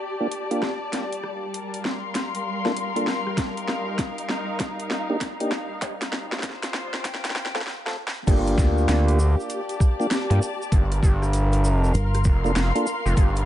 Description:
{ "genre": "glitch hop", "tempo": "98 BPM", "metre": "4/4", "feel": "swing 64% on 16ths", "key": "unclear", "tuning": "A4 = 440 Hz", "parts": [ { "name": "muted studio string section", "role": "texture", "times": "0.0-13.5 s", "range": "G3 to C6", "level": "-30 LUFS", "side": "left 2 dB", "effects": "sidechain pumping" }, { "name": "mellow tonewheel organ", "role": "stabs", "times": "0.2-12.9 s", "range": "A3 to A4", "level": "-28 LUFS", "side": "equal", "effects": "slow rotary speaker, sidechain pumping, low-pass filter, dub echo" }, { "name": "drum and bass drum kit", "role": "drums", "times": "0.3-13.5 s", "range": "crash cymbal, hi-hat, rim click, snare drum", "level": "-29 LUFS", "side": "equal", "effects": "overdrive" }, { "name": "electronic kick drum", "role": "drums", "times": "3.4-13.3 s", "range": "none", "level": "-19 LUFS", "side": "equal", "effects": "none" }, { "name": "gritty driven synth bass", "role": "bass", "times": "8.3-13.5 s", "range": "F1 to G2", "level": "-20 LUFS", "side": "equal", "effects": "none" }, { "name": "tube shaker", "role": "percussion", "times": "8.3-13.5 s", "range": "none", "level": "-40 LUFS", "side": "equal", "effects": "none" }, { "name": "fingered electric bass", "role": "bass", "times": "11.9-12.2 s", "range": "G1", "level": "-21 LUFS", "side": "equal", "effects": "tube saturation" } ], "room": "light reverb", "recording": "echo-heavy mix, high-pass filter, nothing above 10.6 kHz", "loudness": "-21 LUFS", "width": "side -13 dB against mid", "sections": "0.0-8.3 A section; 8.3-13.5 B section", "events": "build-up 0.0-8.3; drum fill 0.0-7.7, 7.7-8.3; filter sweep on tonewheel organ 0.0-8.3; filter sweep 0.0-8.3; break 7.7-8.3; drop 8.3-13.5", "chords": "0.0 Gm7; 0.9 Bbmaj7/G; 3.4 Ebmaj7/G; 5.8 F/G; 8.3 Gm7; 10.7 Bbmaj7/G", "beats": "0.31 | 0.93 1.54 2.15 2.76 | 3.38 3.99 4.60 5.21 | 5.82 6.44 7.05 7.66 | 8.27 8.89 9.50 10.11 | 10.72 11.33 11.95 12.56 | 13.17" }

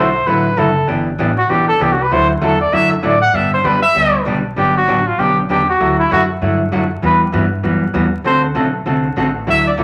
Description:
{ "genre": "country, western swing", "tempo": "195 BPM", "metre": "4/4", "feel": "swing 62% on 8ths", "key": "G major", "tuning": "A4 = 440 Hz", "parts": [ { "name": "warm trumpet", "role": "melody", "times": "0.0-9.8 s", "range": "E4 to F#5", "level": "-16 LUFS", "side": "equal", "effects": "none" }, { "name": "vintage hollow-body jazz guitar", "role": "accompaniment", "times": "0.0-9.8 s", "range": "D3 to A4", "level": "-19 LUFS", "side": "equal", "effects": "none" }, { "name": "upright bass", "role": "bass", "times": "0.0-9.8 s", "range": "F#1 to A2", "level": "-25 LUFS", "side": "equal", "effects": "none" } ], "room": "moderate large studio reverb, RT60 0.8 s", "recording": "vinyl crackle", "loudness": "-15 LUFS", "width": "mono", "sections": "0.0-4.6 A section; 4.6-9.8 A section", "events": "trumpet solo 0.0-4.6, 4.6-9.8", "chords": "0.0 Dadd9; 0.9 Em7; 2.1 Dadd9; 3.3 G; 4.6 Gmaj7; 5.8 Dadd9; 7.0 Emadd9; 8.3 D7", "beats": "0.27 0.57 | 0.88 1.19 1.50 1.80 | 2.11 2.42 2.73 3.03 | 3.34 3.65 3.96 4.26 | 4.57 4.88 5.18 5.49 | 5.80 6.11 6.41 6.72 | 7.03 7.33 7.64 7.95 | 8.25 8.56 8.87 9.17 | 9.48 9.78" }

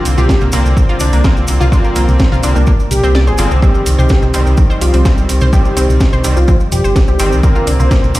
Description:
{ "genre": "melodic techno", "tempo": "126 BPM", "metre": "4/4", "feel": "straight", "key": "C minor", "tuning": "A4 = 441 Hz", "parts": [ { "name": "wide unison lead", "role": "melody", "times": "0.0-8.0 s", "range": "D4 to C5", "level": "-20 LUFS", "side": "equal", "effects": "sidechain pumping, ping-pong delay" }, { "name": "warm analog pad", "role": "sustained chords", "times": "0.0-8.2 s", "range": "G3 to Eb5", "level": "-24 LUFS", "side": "right 1 dB", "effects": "chorus, sidechain pumping" }, { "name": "sync-sweep polysynth", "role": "stabs", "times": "0.0-8.2 s", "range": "D3 to C4", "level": "-20 LUFS", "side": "left 1 dB", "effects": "chorus, sidechain pumping, digital delay" }, { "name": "round analog bass", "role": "bass", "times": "0.1-8.2 s", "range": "G1 to F2", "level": "-12 LUFS", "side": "equal", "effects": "sidechain pumping" }, { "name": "house drum kit", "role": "drums", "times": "0.1-8.2 s", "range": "hi-hat, snare drum, toms", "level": "-20 LUFS", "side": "equal", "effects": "overdrive" }, { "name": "maracas", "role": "percussion", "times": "0.1-8.2 s", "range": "none", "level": "-28 LUFS", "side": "right 1 dB", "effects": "none" }, { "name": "analog pluck", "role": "arpeggios", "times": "0.2-8.0 s", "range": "Bb3 to D6", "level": "-22 LUFS", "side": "equal", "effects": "chorus, sidechain pumping, digital delay" }, { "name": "electronic kick drum", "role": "drums", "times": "0.3-8.0 s", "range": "none", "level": "-12 LUFS", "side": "equal", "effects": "none" } ], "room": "little or no reverb", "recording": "played on a big sound system in a bare room, stone room reverb", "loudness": "-9 LUFS", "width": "side -17 dB against mid", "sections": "0.0-8.2 A section", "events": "kick drops out 3.1-3.6", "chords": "0.0 Bbadd9/C; 3.6 Cm; 7.4 Bbadd9", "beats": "0.29 0.77 1.24 | 1.72 2.20 2.67 3.15 | 3.62 4.10 4.58 5.05 | 5.53 6.00 6.48 6.96 | 7.43 7.91" }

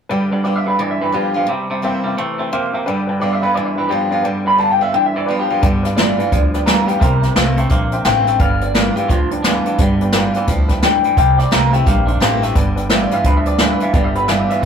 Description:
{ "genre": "rockabilly", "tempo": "173 BPM", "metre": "4/4", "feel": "swing 62% on 8ths", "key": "G mixolydian", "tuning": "A4 = 440 Hz", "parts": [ { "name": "honky-tonk upright piano", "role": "accompaniment", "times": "0.1-14.6 s", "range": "B4 to G5", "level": "-25 LUFS", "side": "left 1 dB", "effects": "none" }, { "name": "picked steel-string acoustic guitar", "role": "accompaniment", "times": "0.1-14.6 s", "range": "G2 to F4", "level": "-21 LUFS", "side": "right 1 dB", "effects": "none" }, { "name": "twangy electric guitar", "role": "riff", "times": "0.1-14.6 s", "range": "G2 to Bb3", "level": "-24 LUFS", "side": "right 2 dB", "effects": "spring reverb" }, { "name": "electric guitar through a small old amp", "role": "melody", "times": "0.4-14.7 s", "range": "D4 to B5", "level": "-18 LUFS", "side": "left 2 dB", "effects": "none" }, { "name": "upright bass", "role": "bass", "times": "5.6-14.7 s", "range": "G1 to D2", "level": "-19 LUFS", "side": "equal", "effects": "none" }, { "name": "jazz brush drum kit", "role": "drums", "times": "5.6-14.7 s", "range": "hi-hat, kick drum, snare drum", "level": "-17 LUFS", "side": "equal", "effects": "none" } ], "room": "light reverb", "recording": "rough rehearsal-room recording", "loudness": "-13 LUFS", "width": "side -7 dB against mid", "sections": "0.1-5.6 A section; 5.6-14.7 B section", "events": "none", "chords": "0.1 G7; 1.5 C7; 2.9 G7; 7.0 C7; 8.4 G7; 11.2 C7; 12.6 G7", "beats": "| 0.10 0.45 0.79 1.14 | 1.48 1.83 2.17 2.52 | 2.87 3.21 3.56 3.91 | 4.25 4.60 4.94 5.29 | 5.64 5.98 6.33 6.67 | 7.02 7.37 7.71 8.06 | 8.40 8.75 9.10 9.44 | 9.79 10.13 10.48 10.83 | 11.17 11.52 11.87 12.21 | 12.56 12.91 13.25 13.60 | 13.95 14.29 14.64" }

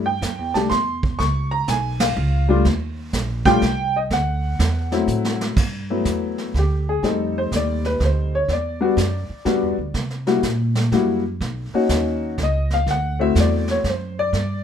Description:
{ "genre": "jazz piano trio", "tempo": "123 BPM", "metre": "3/4", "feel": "swing 66% on 8ths", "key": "unclear", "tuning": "A4 = 440 Hz", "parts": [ { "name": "warm upright piano", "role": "melody", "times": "0.0-14.6 s", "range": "F#3 to C#6", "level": "-20 LUFS", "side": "left 3 dB", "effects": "none" }, { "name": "upright bass", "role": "bass", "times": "0.0-14.6 s", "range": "Bb1 to C3", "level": "-22 LUFS", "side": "right 1 dB", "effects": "none" }, { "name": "vintage brush drum kit", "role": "drums", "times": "0.2-14.6 s", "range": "brushed snare drum, crash cymbal, hi-hat, kick drum, ride cymbal, snare drum", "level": "-25 LUFS", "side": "right 3 dB", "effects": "none" } ], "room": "little or no reverb", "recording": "minimal, uncompressed stereo recording", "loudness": "-18 LUFS", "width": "side -8 dB against mid", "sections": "0.0-5.6 A section; 5.6-14.6 B section", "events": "band accent 1.9; drum fill 5.1-5.6; upright piano solo 5.6-14.6", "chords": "0.0 C6; 1.2 C#7; 2.7 Eb; 4.1 D9; 5.6 Gmaj13; 7.0 F9; 8.5 Em9; 10.0 C7#11; 11.4 Bmaj7; 12.9 D9", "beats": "0.23 0.71 | 1.20 1.68 2.17 | 2.65 3.14 3.62 | 4.11 4.60 5.08 | 5.57 6.06 6.54 | 7.03 7.52 8.01 | 8.49 8.98 9.47 | 9.95 10.44 10.93 | 11.41 11.90 12.38 | 12.87 13.36 13.84 | 14.33" }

